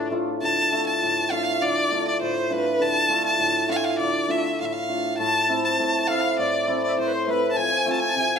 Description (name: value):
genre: klezmer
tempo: 101 BPM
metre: 2/4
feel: straight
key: D dorian sharp4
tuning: A4 = 440 Hz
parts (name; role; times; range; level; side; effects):
- rich violin; melody; 0.0-8.4 s; D4 to A5; -23 LUFS; equal; slapback echo, plate reverb
- accordion; second line; 0.0-0.1, 5.2-8.4 s; B4 to A5; -27 LUFS; left 4 dB; none
- hammered dulcimer; accompaniment; 0.0-8.4 s; A2 to F4; -25 LUFS; equal; none
room: moderate studio reverb, RT60 0.6 s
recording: close, detailed microphones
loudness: -20 LUFS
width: side -7 dB against mid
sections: 0.4-8.4 A section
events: none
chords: 0.4 Dm; 5.2 Am; 7.6 F